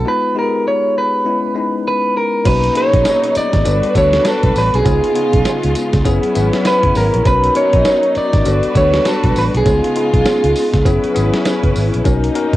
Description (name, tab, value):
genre	R&B, new jack swing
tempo	100 BPM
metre	4/4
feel	swing 60% on 16ths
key	B major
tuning	A4 = 445 Hz
part	electric guitar through a small old amp	melody	0.0-11.3 s	G#4 to D5	-16 LUFS	right 1 dB	spring reverb, cassette tape
part	bell-like tine electric piano	accompaniment	0.0-12.6 s	G#3 to B4	-20 LUFS	left 6 dB	cassette tape
part	vintage muted fingered electric bass	bass	0.0-12.6 s	F#1 to D2	-17 LUFS	right 1 dB	none
part	warm studio string section	sustained chords	2.5-12.6 s	B2 to B4	-21 LUFS	equal	cassette tape
part	dusty soul sampler-style drum kit	drums	2.5-12.6 s	crash cymbal, hi-hat, kick drum, snare drum, tambourine	-18 LUFS	right 1 dB	cassette tape
part	cowbell	percussion	2.5-12.2 s	none	-29 LUFS	right 9 dB	none
room	light reverb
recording	home recording on cassette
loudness	-12 LUFS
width	side -15 dB against mid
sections	0.0-2.5 A section; 2.5-12.6 B section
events	break 0.1-2.5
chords	0.1 G#m69; 1.3 G#madd11; 2.5 Bmaj7; 3.7 Gmaj7; 4.9 C#7; 6.1 F#7sus4; 7.3 Bmaj7; 8.5 Gmaj7; 9.7 C#7; 10.9 F#7sus4; 12.1 Bmaj7